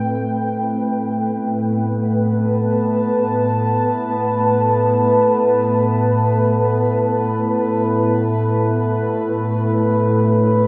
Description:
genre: ambient.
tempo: free time.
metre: none.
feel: none.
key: A minor.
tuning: A4 = 440 Hz.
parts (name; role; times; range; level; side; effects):
warbly tape-like pad; solo; 0.0-10.7 s; A2 to A5; -18 LUFS; equal; chorus, built-in reverb, delay.
room: wet huge ambient reverb, RT60 8.1 s.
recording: dark, warm production.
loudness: -18 LUFS.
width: mono.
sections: 0.0-10.7 A section.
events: none.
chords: 0.0 Am7; 8.6 Bm7/A.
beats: free time.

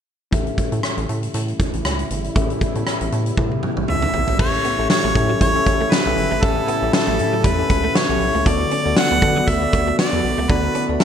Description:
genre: 1980s-style pop.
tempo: 118 BPM.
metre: 4/4.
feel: swing 55% on 16ths.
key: A mixolydian.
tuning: A4 = 441 Hz.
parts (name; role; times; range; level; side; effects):
bell-like tine electric piano; accompaniment; 0.3-11.0 s; A2 to E5; -24 LUFS; left 4 dB; none.
sweeping resonant pad; sustained chords; 0.3-11.0 s; C#3 to F#4; -30 LUFS; right 1 dB; wide subtle chorus.
rubbery square bass; bass; 0.3-11.0 s; F#1 to D3; -24 LUFS; right 1 dB; none.
huge arena drum kit; drums; 0.3-11.0 s; crash cymbal, hi-hat, kick drum, rim click, snare drum, toms; -20 LUFS; equal; vintage 12-bit sampler grit, gated reverb.
clear harmonica; melody; 3.9-11.0 s; A4 to F#5; -21 LUFS; right 1 dB; ping-pong delay.
direct-recorded clean electric guitar; riff; 4.4-10.9 s; F#3 to D4; -29 LUFS; right 4 dB; none.
room: moderate lush hall reverb, RT60 1.9 s, small room ambience.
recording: bright 1980s-style digital production.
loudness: -16 LUFS.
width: side -8 dB against mid.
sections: 0.3-4.4 A section; 4.4-11.0 B section.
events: drum fill 3.4-4.4.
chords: 0.3 A7; 8.5 D6.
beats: | 0.33 0.83 1.34 1.85 | 2.36 2.87 3.38 3.88 | 4.39 4.90 5.41 5.92 | 6.43 6.94 7.44 7.95 | 8.46 8.97 9.48 9.99 | 10.49 11.00.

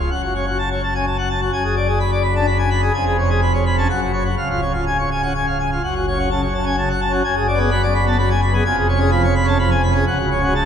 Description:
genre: classical, organ toccata.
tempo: 127 BPM.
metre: 3/4.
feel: straight.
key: F# minor.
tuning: A4 = 440 Hz.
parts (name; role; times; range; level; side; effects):
pipe organ, plenum; solo; 0.0-10.7 s; C#1 to B5; -16 LUFS; equal; none.
room: wet cathedral reverb, RT60 4.9 s.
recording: heard from further back in the room.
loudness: -16 LUFS.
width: side -8 dB against mid.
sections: 0.0-5.8 A section; 5.8-10.7 A section.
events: none.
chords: 0.1 F#m; 1.5 G#m7b5/F#; 2.9 C#7/E#; 3.9 F#5; 4.4 C#; 5.8 F#m; 7.2 G#m7b5/F#; 8.7 C#7/E#; 10.1 F#m/C#.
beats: | 0.11 0.59 1.06 | 1.53 2.00 2.47 | 2.94 3.41 3.89 | 4.37 4.85 5.34 | 5.83 6.31 6.78 | 7.25 7.72 8.19 | 8.65 9.12 9.59 | 10.07 10.55.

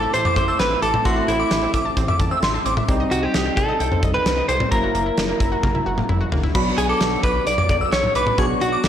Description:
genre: synth-pop.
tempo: 131 BPM.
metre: 4/4.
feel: straight.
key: unclear.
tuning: A4 = 440 Hz.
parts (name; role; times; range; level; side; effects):
direct-recorded clean electric guitar; melody; 0.0-8.9 s; E4 to D5; -21 LUFS; equal; slapback echo.
soft electric-piano-like synth keys; accompaniment; 0.0-8.9 s; F#3 to F#4; -26 LUFS; right 1 dB; chorus.
analog pluck; arpeggios; 0.0-6.5 s; A#3 to A5; -31 LUFS; left 2 dB; chorus, slapback echo.
chorused synth bass; bass; 0.0-8.9 s; F#1 to C2; -27 LUFS; equal; none.
gated 80s drum kit; drums; 0.1-8.9 s; cowbell, crash cymbal, hi-hat, kick drum, snare drum, toms; -22 LUFS; equal; none.
shimmering bell with halo; second line; 0.3-2.7, 6.5-8.9 s; B5 to E6; -25 LUFS; left 1 dB; ensemble chorus, slapback echo.
room: moderate digital room reverb, RT60 1.0 s.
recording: blown-out, overdriven recording, overdrive.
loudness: -17 LUFS.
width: side -9 dB against mid.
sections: 0.0-6.5 A section; 6.5-8.9 A section.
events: drum fill 5.6-6.5.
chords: 0.0 Am; 2.9 Cm; 4.7 F#7; 6.5 Bm.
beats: 0.14 0.59 | 1.05 1.51 1.97 2.43 | 2.88 3.34 3.80 4.26 | 4.72 5.17 5.63 6.09 | 6.55 7.01 7.47 7.92 | 8.38 8.84.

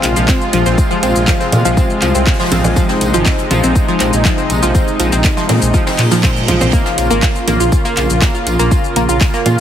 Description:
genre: melodic techno.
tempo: 121 BPM.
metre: 4/4.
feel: straight.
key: unclear.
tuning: A4 = 440 Hz.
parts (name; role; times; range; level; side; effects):
lush unison pad; sustained chords; 0.0-9.6 s; C3 to F4; -18 LUFS; equal; chorus, sidechain pumping.
analog pluck; arpeggios; 0.0-9.6 s; F3 to F5; -17 LUFS; equal; chorus, phaser, sidechain pumping, ping-pong delay.
dark detuned saw bass; bass; 0.0-9.6 s; Ab1 to Bb2; -16 LUFS; equal; tube saturation, sidechain pumping.
house drum kit; drums; 0.0-9.6 s; congas, handclaps, hi-hat, shaker; -19 LUFS; right 1 dB; small room ambience.
jazz brush drum kit; drums; 0.0-9.6 s; hi-hat, snare drum, tambourine; -28 LUFS; left 1 dB; none.
electronic kick drum; drums; 0.3-9.3 s; none; -14 LUFS; equal; small room ambience.
reverse cymbal; sound effects; 6.0-6.7 s; none; -25 LUFS; right 6 dB; none.
room: light reverb, small room ambience.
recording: heavily compressed radio sound.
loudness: -11 LUFS.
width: side -10 dB against mid.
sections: 0.0-9.6 A section.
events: reverse cymbal 6.0-6.7.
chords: 0.0 Fm; 6.7 Bbm.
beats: 0.28 | 0.78 1.28 1.77 2.27 | 2.76 3.26 3.76 4.25 | 4.75 5.24 5.74 6.24 | 6.73 7.23 7.72 8.22 | 8.71 9.21.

